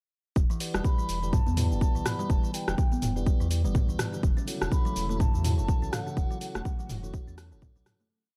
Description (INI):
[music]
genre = afro house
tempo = 124 BPM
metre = 4/4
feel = swing 58% on 16ths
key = E dorian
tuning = A4 = 443 Hz
[part]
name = warm sub bass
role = bass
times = 0.4-7.8 s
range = E1 to E2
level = -33 LUFS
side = equal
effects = sidechain pumping
[part]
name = electronic kick drum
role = drums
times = 0.4-7.7 s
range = none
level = -28 LUFS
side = equal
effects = none
[part]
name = house drum kit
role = drums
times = 0.4-8.1 s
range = cabasa, hi-hat, rim click, toms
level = -36 LUFS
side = equal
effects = none
[part]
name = kalimba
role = arpeggios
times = 0.5-8.1 s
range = B2 to C#4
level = -39 LUFS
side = equal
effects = sidechain pumping, digital delay
[part]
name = tonewheel organ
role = stabs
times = 0.6-8.1 s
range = E4 to A5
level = -44 LUFS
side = equal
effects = slow rotary speaker, vintage 12-bit sampler grit, sidechain pumping, digital delay
[part]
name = mellow bansuri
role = melody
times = 0.8-7.4 s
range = F#5 to B5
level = -40 LUFS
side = equal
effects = vintage 12-bit sampler grit, digital delay
[part]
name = warm analog pad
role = sustained chords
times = 4.2-8.1 s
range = C#3 to F#4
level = -43 LUFS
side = equal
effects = chorus, sidechain pumping
[sound]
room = little or no reverb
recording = dark, warm production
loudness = -28 LUFS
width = mono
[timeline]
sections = 0.4-8.1 drop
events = drop 0.4-8.1; fade-out 5.5-8.1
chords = 0.4 Em9; 4.2 F#m7/E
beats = | 0.36 0.85 1.33 1.81 | 2.30 2.78 3.27 3.75 | 4.23 4.72 5.20 5.68 | 6.17 6.65 7.14 7.62